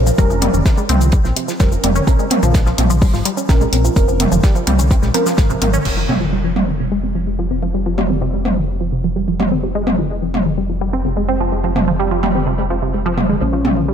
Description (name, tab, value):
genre	melodic techno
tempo	127 BPM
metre	4/4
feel	straight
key	F minor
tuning	A4 = 440 Hz
part	tight sequenced synth	arpeggios	0.0-13.9 s	C3 to Db4	-19 LUFS	right 1 dB	chorus, sidechain pumping, diffuse ambient delay
part	filtered dub chord stab	stabs	0.0-13.9 s	Db3 to C5	-24 LUFS	right 1 dB	phaser, analog chorus, sidechain pumping, diffuse ambient delay
part	round analog bass	bass	0.0-13.9 s	F1 to C2	-19 LUFS	equal	sidechain pumping
part	deep house drum kit	drums	0.1-13.7 s	crash cymbal, hi-hat, shaker, toms	-20 LUFS	equal	none
part	electronic kick drum	drums	0.2-5.5 s	none	-14 LUFS	equal	none
part	warm soul drum kit	drums	0.2-5.7 s	hi-hat, snare drum	-32 LUFS	right 3 dB	high-pass filter on hats, high-pass filter on snare, high-pass filter on room
part	impact	sound effects	5.9-7.7 s	none	-25 LUFS	equal	none
part	fat analog lead	melody	13.4-13.9 s	Db4	-20 LUFS	left 1 dB	sidechain pumping, diffuse ambient delay
room	moderate lush hall reverb, RT60 2.0 s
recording	dreamy mix soaked in reverb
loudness	-14 LUFS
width	side -8 dB against mid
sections	0.0-5.9 A section; 5.9-13.9 B section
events	filter sweep on synth arpeggio sound 0.0-5.9; impact 5.9-7.7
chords	0.0 Bbmadd9; 5.9 Fmadd9; 13.4 Bbmadd9